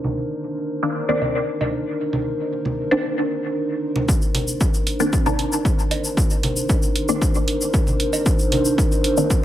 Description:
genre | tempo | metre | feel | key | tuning
dub techno | 115 BPM | 4/4 | straight | C minor | A4 = 440 Hz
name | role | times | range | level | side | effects
dark analog pad | sustained chords | 0.0-9.4 s | D4 to C5 | -24 LUFS | equal | chorus, sidechain pumping
congas and cowbell | percussion | 0.0-8.6 s | none | -27 LUFS | right 2 dB | sidechain pumping on perc, dub echo
filtered dub chord stab | stabs | 0.8-9.4 s | Eb3 to D4 | -22 LUFS | left 1 dB | phaser, sidechain pumping, dub echo
electronic kick drum | drums | 4.1-9.4 s | none | -20 LUFS | equal | overdrive
tube shaker | percussion | 4.1-9.4 s | none | -29 LUFS | left 1 dB | none
electronic hi-hat | drums | 4.3-9.1 s | none | -25 LUFS | right 3 dB | overdrive
room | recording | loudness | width
light reverb | low-pass filter | -18 LUFS | side -12 dB against mid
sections
0.0-4.1 A section; 4.1-9.4 B section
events
filter sweep on analog synth pad 0.0-4.1; filter sweep 0.0-4.1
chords
0.0 Cm9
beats
0.43 0.95 1.48 | 2.00 2.52 3.04 3.56 | 4.08 4.61 5.13 5.65 | 6.17 6.69 7.22 7.74 | 8.26 8.78 9.30

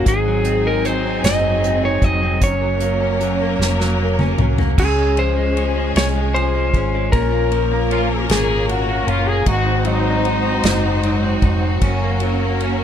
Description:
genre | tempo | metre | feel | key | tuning
six-eight pop ballad | 51 BPM (dotted quarters) | 6/8 | straight | Db major | A4 = 440 Hz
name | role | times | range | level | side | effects
lightly driven lead guitar | melody | 0.0-8.3 s | Ab4 to Eb5 | -21 LUFS | left 2 dB | none
direct-recorded clean electric guitar | accompaniment | 0.0-12.8 s | Gb2 to Eb4 | -22 LUFS | right 1 dB | double-tracked left and right
clear studio string section | sustained chords | 0.0-12.8 s | Gb3 to C5 | -24 LUFS | equal | none
hollow-body short-scale fingered electric bass | bass | 0.0-12.8 s | F1 to Db2 | -21 LUFS | equal | none
unplugged drum kit | drums | 0.1-12.8 s | crash cymbal, hi-hat, kick drum, ride cymbal, snare drum, toms | -20 LUFS | equal | none
muted French horn section | second line | 7.9-11.4 s | Eb4 to Ab4 | -21 LUFS | left 3 dB | none
room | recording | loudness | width
little or no reverb | dark, warm production | -15 LUFS | side -9 dB against mid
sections
0.0-4.8 A section; 4.8-12.8 B section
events
drum fill 3.6-4.8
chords
0.1 Ab7; 2.4 Gb; 4.8 Db; 7.1 Bbm; 9.5 Ab7; 11.8 Gb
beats
| 0.07 1.24 | 2.42 3.60 | 4.78 5.96 | 7.13 8.30 | 9.47 10.64 | 11.82

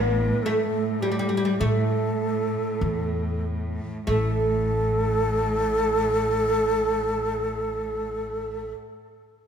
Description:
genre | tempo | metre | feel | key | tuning
arabic | free time | none | none | unclear | A4 = 438 Hz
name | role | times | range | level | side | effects
oud | melody | 0.0-8.7 s | G3 to Bb3+50c | -28 LUFS | right 2 dB | none
breathy bright low ney | second line | 0.0-8.7 s | G4 to Bb4+50c | -25 LUFS | equal | tape echo
upright bass | bass | 0.0-8.7 s | A1 to A2 | -28 LUFS | left 1 dB | none
warm cello | drone | 0.0-8.7 s | A2 | -32 LUFS | equal | none
room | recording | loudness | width
moderate recital hall reverb, RT60 1.6 s | none | -22 LUFS | side -8 dB against mid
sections
0.0-4.1 A section; 4.1-9.5 B section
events
slowing down 0.0-4.1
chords
none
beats
free time

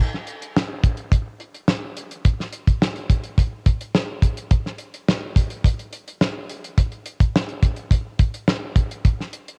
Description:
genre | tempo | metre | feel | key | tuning
indie pop | 106 BPM | 4/4 | straight | none | none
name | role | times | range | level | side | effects
damped 70s drum kit | drums | 0.1-9.6 s | hi-hat, kick drum, snare drum | -21 LUFS | equal | none
room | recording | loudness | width
light reverb | home recording on cassette | -22 LUFS | mono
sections
0.0-9.6 A section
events
none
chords
none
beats
0.55 1.12 1.68 | 2.25 2.81 3.38 3.94 | 4.51 5.08 5.64 6.21 | 6.78 7.34 7.91 8.48 | 9.05

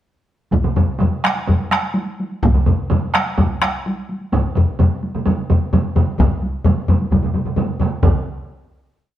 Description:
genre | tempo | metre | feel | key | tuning
japanese traditional, taiko drum ensemble | 128 BPM | 4/4 | straight | none | none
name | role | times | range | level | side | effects
taiko ensemble | percussion | 0.5-8.2 s | none | -23 LUFS | equal | none
taiko ensemble | percussion | 0.5-8.4 s | none | -18 LUFS | left 2 dB | none
taiko ensemble | percussion | 0.5-8.4 s | none | -22 LUFS | right 4 dB | none
taiko ensemble | percussion | 0.5-8.2 s | none | -20 LUFS | equal | none
room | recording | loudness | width
wet stone room reverb, RT60 1.2 s | band playing live in one room | -16 LUFS | side -12 dB against mid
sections
0.5-8.0 A section; 8.0-9.2 final hit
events
speeding up 0.5-9.2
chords
none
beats
| 0.52 0.99 1.47 1.95 | 2.43 2.91 3.38 3.85 | 4.33 4.80 5.26 5.73 | 6.20 6.66 7.12 7.57 | 8.03

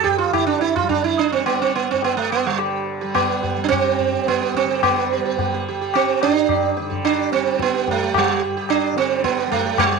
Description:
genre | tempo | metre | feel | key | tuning
indian classical, Hindustani | 108 BPM | 3/4 | straight | G raga khamaj | A4 = 439 Hz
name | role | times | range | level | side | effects
sitar | melody | 0.0-10.0 s | G3 to G4 | -18 LUFS | right 9 dB | none
tanpura | drone | 0.0-10.0 s | G2 to G3 | -30 LUFS | left 2 dB | none
tabla | percussion | 0.1-10.0 s | none | -24 LUFS | left 11 dB | none
room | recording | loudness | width
light reverb, small room reverb | 1960s-style stereo with parts hard left and right | -17 LUFS | side -4 dB against mid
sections
0.0-10.0 A section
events
speeding up 0.0-10.0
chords
none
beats
0.33 0.90 | 1.46 2.03 2.59 | 3.15 3.71 4.27 | 4.83 5.38 5.94 | 6.49 7.05 7.60 | 8.15 8.70 9.24 | 9.79

